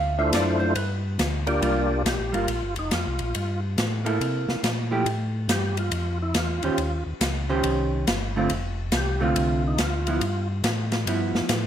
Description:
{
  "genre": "soul jazz organ trio",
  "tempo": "140 BPM",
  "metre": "4/4",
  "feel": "swing 65% on 8ths",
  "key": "C mixolydian",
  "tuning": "A4 = 438 Hz",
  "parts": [
    { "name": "vintage hollow-body jazz guitar", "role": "accompaniment", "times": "0.0-11.7 s", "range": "D3 to F5", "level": "-26 LUFS", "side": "right 2 dB", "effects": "none" },
    { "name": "mellow tonewheel organ", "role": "bass", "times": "0.0-11.7 s", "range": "F1 to C3", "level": "-27 LUFS", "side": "equal", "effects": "slow rotary speaker" },
    { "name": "percussive tonewheel organ", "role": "melody", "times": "0.2-10.5 s", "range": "A3 to D5", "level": "-28 LUFS", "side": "equal", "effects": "slow rotary speaker, overdrive, chorus vibrato" },
    { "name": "swinging big-band drum kit", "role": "drums", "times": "0.3-11.6 s", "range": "hi-hat, ride cymbal, snare drum", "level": "-28 LUFS", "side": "left 1 dB", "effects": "none" }
  ],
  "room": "light reverb, small room reverb",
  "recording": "rough home demo mix",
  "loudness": "-22 LUFS",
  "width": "side -9 dB against mid",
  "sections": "0.0-1.6 A section; 1.6-11.7 A section",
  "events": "hollow-body jazz guitar solo 0.0-1.6; tonewheel organ solo 1.6-11.7",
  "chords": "0.0 Dm7; 0.8 G7; 1.6 C7sus4; 3.4 Gmadd9; 4.2 C6; 5.1 Fmaj9; 6.8 Eb13; 8.5 Dm7; 10.2 G13"
}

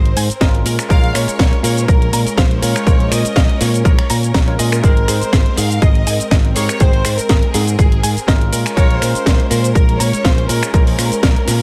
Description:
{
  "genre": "nu-disco, nu disco",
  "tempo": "122 BPM",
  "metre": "4/4",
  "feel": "swing 54% on 16ths",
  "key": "unclear",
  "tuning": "A4 = 442 Hz",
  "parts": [
    { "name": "warm studio violin section", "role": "melody", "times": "0.0-11.6 s", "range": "Ab4 to F5", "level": "-26 LUFS", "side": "equal", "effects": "digital delay" },
    { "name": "bell-like tine electric piano", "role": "accompaniment", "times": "0.0-11.6 s", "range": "Ab3 to G5", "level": "-27 LUFS", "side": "equal", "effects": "subtle chorus, digital delay" },
    { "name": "clear studio string section", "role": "sustained chords", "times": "0.0-11.6 s", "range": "Ab3 to Bb4", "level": "-30 LUFS", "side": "equal", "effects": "none" },
    { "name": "fingered electric bass", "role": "bass", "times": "0.0-11.6 s", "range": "Ab1 to Bb2", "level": "-20 LUFS", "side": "equal", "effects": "none" },
    { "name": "house drum kit", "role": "drums", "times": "0.1-11.6 s", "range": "finger snaps, hi-hat, shaker, snare drum", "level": "-22 LUFS", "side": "equal", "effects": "overdrive" },
    { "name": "direct-recorded clean electric guitar", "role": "riff", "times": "0.2-11.6 s", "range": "Ab4 to Bb5", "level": "-28 LUFS", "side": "equal", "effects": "analog chorus" },
    { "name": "electronic kick drum", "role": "drums", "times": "0.4-11.3 s", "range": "none", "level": "-15 LUFS", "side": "equal", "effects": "overdrive" }
  ],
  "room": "digital ambience",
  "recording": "none",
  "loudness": "-14 LUFS",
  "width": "mono",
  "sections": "0.0-11.6 A section",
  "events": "none",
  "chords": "0.0 Abmaj9; 0.7 Bbm7; 4.8 Abmaj9; 8.5 Bbm7"
}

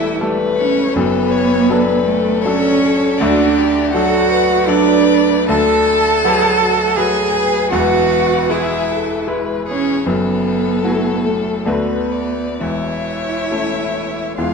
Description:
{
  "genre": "classical, slow romantic movement for piano quartet",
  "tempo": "60-82 BPM",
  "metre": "3/4",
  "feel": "rubato",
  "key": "D major, A major from 5.5 s",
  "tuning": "A4 = 440 Hz",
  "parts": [
    { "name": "warm violin", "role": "melody", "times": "0.0-14.5 s", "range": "A4 to A5", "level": "-22 LUFS", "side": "left 9 dB", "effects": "none" },
    { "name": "rich cello", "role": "second line", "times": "0.0-14.5 s", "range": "A3 to A4", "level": "-17 LUFS", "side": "right 6 dB", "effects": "none" },
    { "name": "rich violin", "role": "second line", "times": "0.0-14.5 s", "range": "F#4 to F5", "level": "-21 LUFS", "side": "left 5 dB", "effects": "none" },
    { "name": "bright grand piano", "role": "accompaniment", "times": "0.0-14.5 s", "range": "E1 to B4", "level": "-19 LUFS", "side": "left 2 dB", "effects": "none" }
  ],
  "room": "wet recital hall reverb, RT60 1.6 s",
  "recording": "dark, warm production, nothing above 10.7 kHz",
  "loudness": "-13 LUFS",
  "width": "side -5 dB against mid",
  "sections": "0.0-14.5 A section",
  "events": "none",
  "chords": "0.0 A7/E; 1.0 D/F#; 3.2 D; 5.5 Bm7/D; 7.7 E; 10.1 F#m7; 11.7 Bm7/D; 12.6 A/E"
}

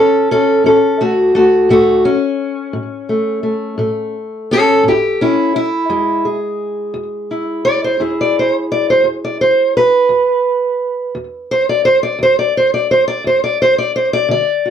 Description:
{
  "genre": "acoustic country blues, solo or duo",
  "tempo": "57 BPM (dotted quarters)",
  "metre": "12/8",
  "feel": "straight",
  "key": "unclear",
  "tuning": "A4 = 440 Hz",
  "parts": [
    { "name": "fingerpicked steel-string acoustic guitar", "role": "solo", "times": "0.0-14.7 s", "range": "E2 to D5", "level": "-12 LUFS", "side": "equal", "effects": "slapback echo" }
  ],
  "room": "moderate booth ambience, RT60 0.3 s",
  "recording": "dry, close 1970s-style studio recording",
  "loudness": "-12 LUFS",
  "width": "side -8 dB against mid",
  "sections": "0.0-14.7 A section",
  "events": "steel-string acoustic guitar solo 0.0-14.7",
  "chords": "0.0 A; 5.9 E"
}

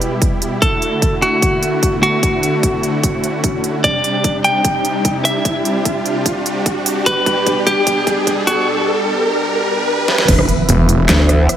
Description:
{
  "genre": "heavy wobble dubstep",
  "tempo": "149 BPM",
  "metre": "4/4",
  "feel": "half-time",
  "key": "E minor",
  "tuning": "A4 = 444 Hz",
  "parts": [
    { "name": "clean electric guitar", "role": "melody", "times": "0.0-8.7 s", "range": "F#4 to G5", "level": "-18 LUFS", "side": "equal", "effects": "digital delay" },
    { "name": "supersaw chords", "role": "sustained chords", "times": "0.0-11.6 s", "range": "B2 to E5", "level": "-20 LUFS", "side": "equal", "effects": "vintage 12-bit sampler grit, sidechain pumping, low-pass filter" },
    { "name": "dubstep drum kit", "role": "drums", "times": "0.0-11.6 s", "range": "crash cymbal, handclaps, hi-hat, rim click, snare drum", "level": "-18 LUFS", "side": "right 1 dB", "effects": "none" },
    { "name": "riser and impact", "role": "sound effects", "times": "0.4-11.6 s", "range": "none", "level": "-21 LUFS", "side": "equal", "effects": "none" },
    { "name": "electronic kick drum", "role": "drums", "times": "0.2-10.4 s", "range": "none", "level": "-19 LUFS", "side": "equal", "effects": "none" },
    { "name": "growl bass", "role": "bass", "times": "10.3-11.5 s", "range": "E1 to D2", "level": "-12 LUFS", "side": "equal", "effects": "chorus, overdrive" },
    { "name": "snarling distorted saw bass", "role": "bass", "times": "10.7-11.1 s", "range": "E1", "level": "-12 LUFS", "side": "equal", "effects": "distortion, overdrive" }
  ],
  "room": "moderate lush hall reverb, RT60 1.8 s, digital ambience",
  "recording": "high-pass filter",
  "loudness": "-13 LUFS",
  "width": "side -10 dB against mid",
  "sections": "0.0-10.3 A section; 10.3-11.6 B section",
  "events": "build-up 0.0-10.3; riser 0.4-10.3; drum fill 3.8-8.7, 10.1; drop 10.3-11.6; impact 10.3-11.6",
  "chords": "0.0 Em; 0.6 Dadd9; 3.8 Csus2; 7.1 G/B; 10.3 E5"
}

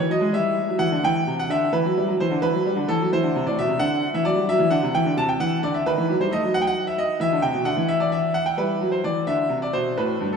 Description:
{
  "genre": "classical, baroque-style suite movement for grand piano",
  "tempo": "87 BPM (dotted quarters)",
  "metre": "12/8",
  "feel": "rubato",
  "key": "E minor",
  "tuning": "A4 = 441 Hz",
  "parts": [
    { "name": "bright grand piano", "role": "solo", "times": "0.0-10.4 s", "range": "G2 to A5", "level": "-20 LUFS", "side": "equal", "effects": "none" }
  ],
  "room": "wet church reverb, RT60 3.0 s",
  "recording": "none",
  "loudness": "-20 LUFS",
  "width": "side -6 dB against mid",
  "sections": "0.0-10.4 A section",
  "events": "none",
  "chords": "0.3 Em; 3.1 C; 4.5 D9/C; 5.8 D#m; 7.2 E5"
}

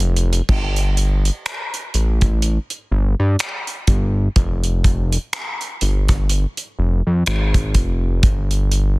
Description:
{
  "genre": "contemporary R&B",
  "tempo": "62 BPM",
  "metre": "4/4",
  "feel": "swing 58% on 16ths",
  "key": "unclear",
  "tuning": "A4 = 440 Hz",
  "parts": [
    { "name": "fat analog bass", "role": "bass", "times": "0.0-9.0 s", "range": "F1 to G2", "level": "-17 LUFS", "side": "equal", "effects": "none" },
    { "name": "warm soul drum kit", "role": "drums", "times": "0.0-9.0 s", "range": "crash cymbal, finger snaps, hi-hat, kick drum, rim click", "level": "-19 LUFS", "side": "equal", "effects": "soft clipping on snare" }
  ],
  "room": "little or no reverb",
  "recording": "dense, heavily limited modern master",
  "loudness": "-16 LUFS",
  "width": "side -24 dB against mid",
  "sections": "0.5-9.0 A section",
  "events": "break 0.0-0.5",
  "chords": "none"
}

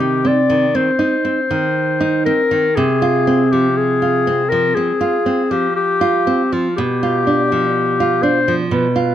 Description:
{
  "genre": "romantic duo for clarinet and classical guitar",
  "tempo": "60 BPM",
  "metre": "4/4",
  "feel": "rubato",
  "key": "C minor",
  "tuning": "A4 = 440 Hz",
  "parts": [
    { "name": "mellow clarinet", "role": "melody", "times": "0.0-9.1 s", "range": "F4 to D5", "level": "-17 LUFS", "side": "left 5 dB", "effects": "none" },
    { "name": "nylon-string guitar", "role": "accompaniment", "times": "0.0-9.1 s", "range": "B2 to F4", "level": "-17 LUFS", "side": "right 3 dB", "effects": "none" }
  ],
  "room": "light reverb",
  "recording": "close, detailed microphones",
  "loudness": "-14 LUFS",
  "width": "side -11 dB against mid",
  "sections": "0.0-9.1 A section",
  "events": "none",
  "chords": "0.0 Cm; 2.8 F5/C; 6.8 G7/B"
}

